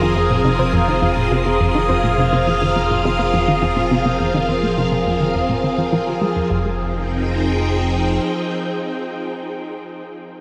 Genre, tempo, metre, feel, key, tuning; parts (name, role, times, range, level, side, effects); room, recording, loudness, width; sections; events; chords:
ambient; 104 BPM; 4/4; straight; F minor; A4 = 439 Hz
phased string machine; sustained chords; 0.0-9.6 s; F3 to G5; -22 LUFS; equal; ensemble chorus, phaser
soft round pluck; arpeggios; 0.0-6.8 s; Eb4 to C5; -33 LUFS; equal
resonant blip pluck; riff; 0.0-6.8 s; F2 to Ab3; -23 LUFS; equal; chorus, phaser, analog delay
fat analog bass; bass; 0.0-8.2 s; F1; -27 LUFS; equal
bubbling stepped-filter texture; texture; 0.0-6.5 s; Bb4 to Eb6; -27 LUFS; equal; chorus, built-in reverb
wet huge ambient reverb, RT60 8.4 s; -18 LUFS; mono
0.0-6.5 A section; 6.5-8.8 B section
0.0 Fm7